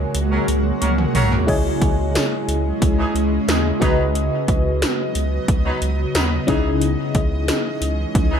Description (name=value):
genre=1980s-style pop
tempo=90 BPM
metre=4/4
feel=straight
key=C# minor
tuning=A4 = 445 Hz
part: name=FM electric piano with tremolo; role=accompaniment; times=0.0-8.4 s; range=C#3 to G#5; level=-23 LUFS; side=left 2 dB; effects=phaser
part: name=granular cloud pad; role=sustained chords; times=0.0-8.4 s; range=C#3 to D#5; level=-24 LUFS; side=equal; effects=built-in reverb
part: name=round analog bass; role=bass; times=0.0-8.4 s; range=B1 to D#2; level=-22 LUFS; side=equal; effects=none
part: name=80s electronic pad drums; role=drums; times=0.1-8.3 s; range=crash cymbal, hi-hat, kick drum, snare drum, tambourine, toms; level=-20 LUFS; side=equal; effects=gated reverb on snare and toms, overdrive
part: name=warm horn section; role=stabs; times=0.3-8.4 s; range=E3 to B4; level=-27 LUFS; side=right 1 dB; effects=ping-pong delay
room=light reverb, digital ambience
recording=dark, warm production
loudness=-17 LUFS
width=side -8 dB against mid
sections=0.0-8.4 A section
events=drum fill 0.8-1.5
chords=0.0 F#add9/C#; 1.5 C#madd9; 3.8 B/C#; 6.5 C#madd9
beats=0.15 0.81 | 1.48 2.15 2.81 3.48 | 4.15 4.82 5.48 6.15 | 6.82 7.48 8.15